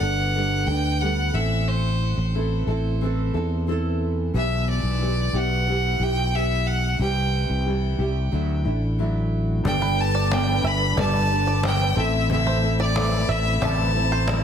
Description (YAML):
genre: acoustic pop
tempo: 90 BPM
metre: 4/4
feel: straight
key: G major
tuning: A4 = 440 Hz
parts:
  - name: bright violin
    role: melody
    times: 0.0-14.4 s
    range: C5 to B5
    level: -26 LUFS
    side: equal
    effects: plate reverb, ping-pong delay
  - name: nylon-string guitar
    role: accompaniment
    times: 0.0-14.4 s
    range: A2 to A4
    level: -27 LUFS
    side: right 1 dB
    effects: double-tracked left and right, plate reverb
  - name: sustaining fretless electric bass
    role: bass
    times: 0.0-14.4 s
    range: G1 to E2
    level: -23 LUFS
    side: equal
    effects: none
  - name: bright upright piano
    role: accompaniment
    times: 9.6-14.4 s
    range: B3 to E5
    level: -34 LUFS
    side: left 5 dB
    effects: none
  - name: dark studio string section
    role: sustained chords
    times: 9.6-14.4 s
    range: G3 to B4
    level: -32 LUFS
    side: left 1 dB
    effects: plate reverb
  - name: cajon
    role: drums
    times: 9.7-14.4 s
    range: none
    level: -30 LUFS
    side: equal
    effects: none
  - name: bluegrass banjo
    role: arpeggios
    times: 9.8-14.3 s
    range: B4 to E5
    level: -31 LUFS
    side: right 4 dB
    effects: plate reverb, ping-pong delay
room: light reverb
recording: dense, heavily limited modern master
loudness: -20 LUFS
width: side -8 dB against mid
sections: 0.0-9.7 A section; 9.7-14.4 B section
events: none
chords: 0.0 Gadd9; 1.3 Am; 4.3 Em/B; 7.0 C; 8.3 Dadd9; 9.7 Gadd9; 12.0 Am